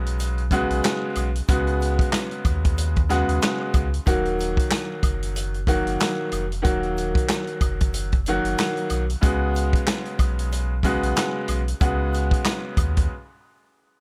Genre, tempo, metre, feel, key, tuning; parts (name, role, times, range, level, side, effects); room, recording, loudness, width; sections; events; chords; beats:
hip hop, boom-bap hip-hop; 93 BPM; 4/4; swing 57% on 16ths; A4 = 440 Hz
bright upright piano; accompaniment; 0.0-13.1 s; Db3 to Gb4; -28 LUFS; equal; cassette tape, high-pass filter, low-pass filter
sub bass with octave; bass; 0.0-13.1 s; Eb1 to Eb2; -28 LUFS; equal
vintage drum kit; drums; 0.1-13.1 s; handclaps, hi-hat, kick drum, snare drum; -25 LUFS; equal
egg shaker and woodblock; percussion; 0.2-12.9 s; -43 LUFS; equal
small room reverb; -23 LUFS; mono
0.0-14.0 A section
break 13.1-14.0
0.0 Db7sus4; 4.1 Ebm; 9.2 Db7sus4
0.20 0.84 | 1.49 2.13 2.78 3.42 | 4.07 4.71 5.36 6.00 | 6.65 7.29 7.94 8.58 | 9.23 9.87 10.52 11.16 | 11.81 12.45 13.10